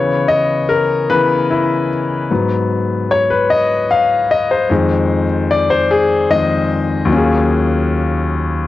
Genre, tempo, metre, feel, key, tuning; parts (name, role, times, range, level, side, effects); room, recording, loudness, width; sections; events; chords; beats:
R&B; 50 BPM (dotted quarters); 6/8; straight; A4 = 439 Hz
clear grand piano; solo; 0.0-8.7 s; Eb2 to F5; -13 LUFS; left 2 dB; cassette tape
moderate booth ambience, RT60 0.3 s; home recording on cassette; -13 LUFS; side -14 dB against mid
0.0-7.1 A section; 7.1-8.7 B section
grand piano solo 0.0-7.1
0.0 Dbm7; 2.3 Abm7; 4.7 Fm7; 7.1 Ebm11
1.10 | 2.30 3.50 | 4.70 5.90 | 7.10 8.30